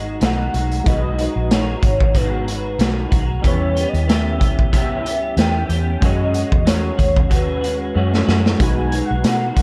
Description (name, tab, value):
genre	indie pop, bedroom pop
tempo	93 BPM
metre	4/4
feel	swing 55% on 16ths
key	B major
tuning	A4 = 440 Hz
part	warm velvety synth lead	melody	0.0-9.6 s	B4 to G#5	-27 LUFS	equal	ensemble chorus, tape echo
part	electric guitar through a small old amp	accompaniment	0.0-9.6 s	B2 to G4	-28 LUFS	equal	ensemble chorus, warbly pitch drift
part	warm analog keys	accompaniment	0.0-9.6 s	G3 to E5	-30 LUFS	equal	chorus
part	vintage muted fingered electric bass	bass	0.0-9.6 s	G#1 to B2	-24 LUFS	equal	none
part	raw garage drum kit	drums	0.2-9.6 s	hi-hat, kick drum, snare drum	-20 LUFS	equal	none
room	light reverb, small room ambience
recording	dark, warm production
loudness	-18 LUFS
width	mono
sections	0.0-9.6 A section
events	drum fill 8.0-8.6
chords	0.0 B6; 3.4 Em6; 6.0 F#sus2; 8.6 B6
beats	0.22 | 0.86 1.51 2.15 2.80 | 3.44 4.09 4.73 5.38 | 6.02 6.67 7.31 7.96 | 8.60 9.25